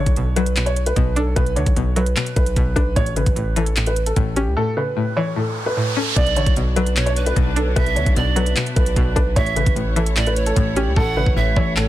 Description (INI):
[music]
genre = hip hop, trap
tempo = 150 BPM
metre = 4/4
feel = half-time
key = B minor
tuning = A4 = 442 Hz
[part]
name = dark baby grand piano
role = melody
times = 0.0-11.9 s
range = G4 to D5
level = -24 LUFS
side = right 1 dB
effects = low-pass filter, digital delay
[part]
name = string-like resonator pluck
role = accompaniment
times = 0.0-11.9 s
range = A2 to D4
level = -24 LUFS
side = left 2 dB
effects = chorus, low-pass filter
[part]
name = distorted 808-style bass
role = bass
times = 0.0-11.9 s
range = A1 to D2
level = -21 LUFS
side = equal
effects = distortion
[part]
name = trap drum kit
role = drums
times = 0.1-11.9 s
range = handclaps, hi-hat, kick drum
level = -20 LUFS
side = equal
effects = vintage 12-bit sampler grit
[part]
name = riser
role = sound effects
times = 5.3-6.2 s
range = none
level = -28 LUFS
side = right 3 dB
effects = none
[part]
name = breathy bright polished pan flute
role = second line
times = 6.2-11.9 s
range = B4 to F#5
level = -26 LUFS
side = right 7 dB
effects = digital delay
[part]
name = dark studio string section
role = sustained chords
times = 6.2-11.9 s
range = A3 to C#5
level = -30 LUFS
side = left 3 dB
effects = none
[sound]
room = small room reverb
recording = dense, heavily limited modern master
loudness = -16 LUFS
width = side -14 dB against mid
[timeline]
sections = 0.0-6.2 A section; 6.2-11.9 B section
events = riser 5.3-6.2; hi-hats muted 11.0-11.9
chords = 0.0 Bm; 3.0 A; 6.2 Bm; 9.4 A